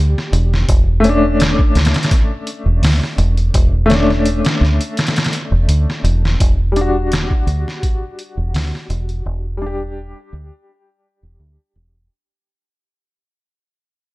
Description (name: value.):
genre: trip hop.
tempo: 84 BPM.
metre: 4/4.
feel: swing 53% on 16ths.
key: E dorian.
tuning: A4 = 440 Hz.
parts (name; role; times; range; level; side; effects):
warm upright piano; accompaniment; 0.0-12.1 s; G3 to G4; -19 LUFS; left 2 dB; tremolo, tape echo.
deep dub fingered electric bass; bass; 0.0-12.1 s; E1 to D2; -16 LUFS; equal; none.
trip hop sampler-style drum kit; drums; 0.2-9.2 s; hi-hat, kick drum, snare drum; -17 LUFS; equal; small room ambience.
room: digital ambience.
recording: none.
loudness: -14 LUFS.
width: side -19 dB against mid.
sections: 0.0-6.4 A section; 6.4-12.1 B section.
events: kick drops out 5.0-6.4; fade-out 6.4-12.1.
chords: 0.0 Em7; 0.7 Aadd11/E; 6.4 Em7.